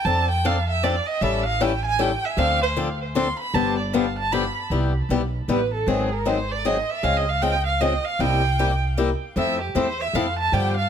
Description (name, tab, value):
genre	acoustic string swing (jazz manouche)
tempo	155 BPM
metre	3/4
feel	swing 63% on 8ths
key	C major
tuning	A4 = 439 Hz
part	warm violin	melody	0.0-10.9 s	G4 to C6	-24 LUFS	right 3 dB	tape echo
part	upright bass	bass	0.0-10.8 s	G1 to G2	-25 LUFS	right 1 dB	none
part	picked swing-style acoustic guitar	accompaniment	0.1-10.7 s	C3 to A4	-24 LUFS	left 5 dB	none
room	light reverb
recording	faint mains hum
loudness	-20 LUFS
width	side -8 dB against mid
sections	0.0-4.7 A section; 4.7-10.9 A section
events	violin solo 0.0-4.7, 4.7-10.9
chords	0.0 F6; 1.2 A7; 2.4 Dm7; 3.5 G7; 4.7 Cmaj7; 5.9 Ab7; 7.0 Dbmaj7; 8.2 C7; 9.4 Fmaj7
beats	| 0.05 0.44 0.82 | 1.21 1.60 1.99 | 2.38 2.76 3.15 | 3.54 3.93 4.32 | 4.70 5.09 5.48 | 5.87 6.26 6.64 | 7.03 7.42 7.81 | 8.20 8.59 8.97 | 9.36 9.75 10.13 | 10.52